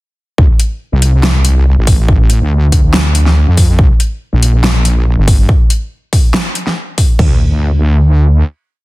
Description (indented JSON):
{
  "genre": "heavy wobble dubstep",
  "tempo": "141 BPM",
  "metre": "4/4",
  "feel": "swing 54% on 16ths, half-time",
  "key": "D minor",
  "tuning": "A4 = 441 Hz",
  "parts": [
    { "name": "wobble bass", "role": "bass", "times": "0.4-8.4 s", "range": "G1 to F2", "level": "-9 LUFS", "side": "equal", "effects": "chorus, overdrive" },
    { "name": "dubstep drum kit", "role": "drums", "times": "0.4-7.3 s", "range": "crash cymbal, kick drum, toms", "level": "-10 LUFS", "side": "equal", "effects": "none" },
    { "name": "dubstep drum kit", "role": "drums", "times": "0.6-7.1 s", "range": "hi-hat, snare drum", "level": "-16 LUFS", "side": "equal", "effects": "none" }
  ],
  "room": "little or no reverb",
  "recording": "dense, heavily limited modern master",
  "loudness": "-9 LUFS",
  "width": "side -20 dB against mid",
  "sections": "0.4-7.2 drop; 7.2-8.8 final note",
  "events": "drop 0.4-7.2",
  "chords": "none"
}